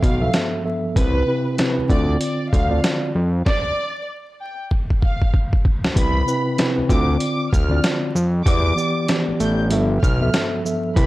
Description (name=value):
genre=hip hop, boom-bap hip-hop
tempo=96 BPM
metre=4/4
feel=swing 61% on 16ths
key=D dorian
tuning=A4 = 440 Hz
part: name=warm studio violin section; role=melody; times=0.0-11.1 s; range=B4 to G6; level=-27 LUFS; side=equal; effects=high-pass filter, low-pass filter
part: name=fat analog bass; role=bass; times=0.0-11.1 s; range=G1 to F2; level=-20 LUFS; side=equal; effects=tube saturation
part: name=trip hop sampler-style drum kit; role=drums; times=0.0-11.1 s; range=hi-hat, kick drum, shaker, snare drum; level=-20 LUFS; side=equal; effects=none
part: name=mellow tine electric piano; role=accompaniment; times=0.2-11.1 s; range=G2 to E5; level=-22 LUFS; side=equal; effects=medium stereo tremolo, cassette tape, high-pass filter, low-pass filter
room=digital ambience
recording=dry, gritty hardware recording, vinyl crackle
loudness=-17 LUFS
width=side -18 dB against mid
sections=0.0-6.0 A section; 6.0-11.1 B section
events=drum fill 4.7-6.0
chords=0.0 G13; 1.0 Cmaj7; 1.9 Dm7; 3.5 N.C.; 6.0 Cmaj7; 6.9 Dm7; 8.5 Em7; 9.7 G13